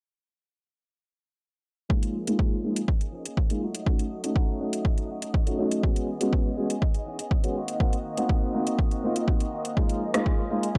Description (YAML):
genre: filtered disco house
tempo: 122 BPM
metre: 4/4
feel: straight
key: Db major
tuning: A4 = 438 Hz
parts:
  - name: dark grand piano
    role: accompaniment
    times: 1.9-10.6 s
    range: Ab3 to Gb4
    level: -30 LUFS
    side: equal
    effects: phaser, sidechain pumping, low-pass filter
  - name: string machine, full ensemble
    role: sustained chords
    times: 1.9-10.8 s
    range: Eb5 to Eb6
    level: -42 LUFS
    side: equal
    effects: ensemble chorus, sidechain pumping, low-pass filter
  - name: direct-recorded clean electric guitar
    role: riff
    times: 1.9-10.8 s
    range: Eb3 to Ab4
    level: -40 LUFS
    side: equal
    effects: phaser, sidechain pumping, low-pass filter
  - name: electronic kick drum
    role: drums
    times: 1.9-10.8 s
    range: none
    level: -27 LUFS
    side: equal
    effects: none
  - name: house drum kit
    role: drums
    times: 2.0-10.7 s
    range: hi-hat, rim click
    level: -35 LUFS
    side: equal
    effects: overdrive, sidechain pumping on hats
room: digital ambience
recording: dry, gritty hardware recording, transformer saturation, cassette tape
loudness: -27 LUFS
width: mono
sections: 1.9-10.8 A section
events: filter sweep 1.9-10.8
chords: 1.9 Db6; 3.6 Gbm6; 5.8 E6; 7.6 Ebm6; 9.8 Db6